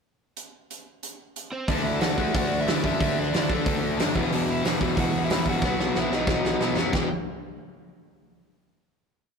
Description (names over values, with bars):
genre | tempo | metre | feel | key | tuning
punk rock | 183 BPM | 4/4 | straight | unclear | A4 = 440 Hz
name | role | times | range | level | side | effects
big rock drum kit | drums | 0.4-7.0 s | hi-hat, kick drum, snare drum | -26 LUFS | right 1 dB | none
overdriven electric guitar | melody | 1.5-7.1 s | A3 to G5 | -31 LUFS | right 1 dB | none
distorted electric guitar | riff | 1.7-7.1 s | E2 to D4 | -27 LUFS | left 6 dB | distortion
overdriven semi-hollow guitar | riff | 1.7-7.1 s | E2 to D4 | -32 LUFS | right 7 dB | none
fuzz picked electric bass | bass | 1.7-7.1 s | E1 to F#2 | -32 LUFS | equal | overdrive
room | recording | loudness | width
light reverb | rough rehearsal-room recording, tube saturation | -22 LUFS | side -6 dB against mid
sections
0.4-1.7 pickup bar; 1.7-6.9 verse; 6.9-8.3 final chord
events
drum fill 5.6-6.9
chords
0.4 N.C.; 1.7 D; 4.2 E5; 5.6 B; 6.9 E5